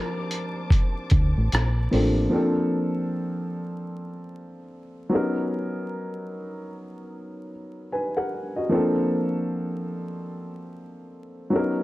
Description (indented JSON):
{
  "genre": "lo-fi hip hop",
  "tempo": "75 BPM",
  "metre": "4/4",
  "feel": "swing 61% on 16ths",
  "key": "Bb major",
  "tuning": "A4 = 440 Hz",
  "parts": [
    { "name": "semi-hollow electric guitar", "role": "melody", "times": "0.0-1.9 s", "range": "Bb4", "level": "-47 LUFS", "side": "left 1 dB", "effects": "none" },
    { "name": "dark upright piano", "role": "accompaniment", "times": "0.0-11.8 s", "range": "F3 to Ab5", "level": "-26 LUFS", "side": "equal", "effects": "low-pass filter" },
    { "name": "dark studio string section", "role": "sustained chords", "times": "0.0-2.3 s", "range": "C5 to D6", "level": "-40 LUFS", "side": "left 2 dB", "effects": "low-pass filter" },
    { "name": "lo-fi sampler-style drum kit", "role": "drums", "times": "0.3-2.2 s", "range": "hi-hat, kick drum, rim click", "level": "-22 LUFS", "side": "equal", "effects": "none" },
    { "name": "deep dub fingered electric bass", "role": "bass", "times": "1.1-2.3 s", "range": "A1 to D2", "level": "-22 LUFS", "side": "equal", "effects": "none" }
  ],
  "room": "light reverb, digital ambience",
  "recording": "vinyl crackle",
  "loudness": "-23 LUFS",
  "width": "side -18 dB against mid",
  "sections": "0.0-2.3 A section; 2.3-11.8 B section",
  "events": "none",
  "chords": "0.0 Bbmaj9; 5.1 Bmaj9; 8.7 Bbmaj9",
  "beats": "0.72 1.52 | 2.32 3.12 3.92 4.72 | 5.52 6.32 7.12 7.92 | 8.72 9.52 10.32 11.12"
}